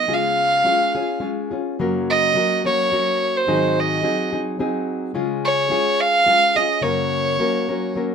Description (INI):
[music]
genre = mexican folk, mariachi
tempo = 107 BPM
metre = 3/4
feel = rubato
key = F# major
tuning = A4 = 440 Hz
[part]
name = rich violin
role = melody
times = 0.0-8.0 s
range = B#4 to E#5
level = -18 LUFS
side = right 2 dB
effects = none
[part]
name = nylon-string guitar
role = accompaniment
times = 0.0-8.1 s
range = F#2 to A#4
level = -22 LUFS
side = left 2 dB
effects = none
[sound]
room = moderate small room reverb, RT60 0.5 s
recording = none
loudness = -17 LUFS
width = side -6 dB against mid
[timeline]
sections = 0.0-8.1 A section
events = none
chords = 0.1 C#; 1.8 F#; 3.5 G#7; 5.2 C#; 6.8 F#